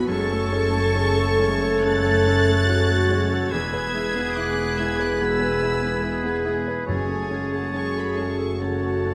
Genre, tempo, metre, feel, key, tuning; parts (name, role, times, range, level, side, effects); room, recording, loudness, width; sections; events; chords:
cinematic, emotional film score for orchestra; 71 BPM; 4/4; rubato; F# minor; A4 = 440 Hz
warm chamber violin section; melody; 0.0-9.1 s; G#5 to A6; -34 LUFS; equal
dark studio violin section; second line; 0.0-9.1 s; C#5 to F#6; -38 LUFS; equal
clear baby grand piano; accompaniment; 0.0-9.1 s; E2 to B4; -31 LUFS; equal
rich studio viola section; accompaniment; 0.0-9.1 s; G#3 to B4; -34 LUFS; equal
mellow French horn section; sustained chords; 0.0-9.1 s; A3 to A4; -30 LUFS; equal
rich symphonic double bass section; bass; 0.0-9.1 s; E1 to F#1; -28 LUFS; equal
warm symphonic cello section; bass; 0.0-9.1 s; F#4 to B4; -30 LUFS; equal
clear oboe; second line; 0.1-9.1 s; B4 to C#5; -33 LUFS; equal
mellow concert flute; second line; 0.1-9.1 s; G#6 to A6; -34 LUFS; equal
timpani; percussion; 6.9-8.1 s; F#2; -34 LUFS; equal
wet recital hall reverb, RT60 1.3 s; -22 LUFS; mono
0.0-9.1 A section
0.1 F#madd9; 3.5 E; 6.9 F#madd9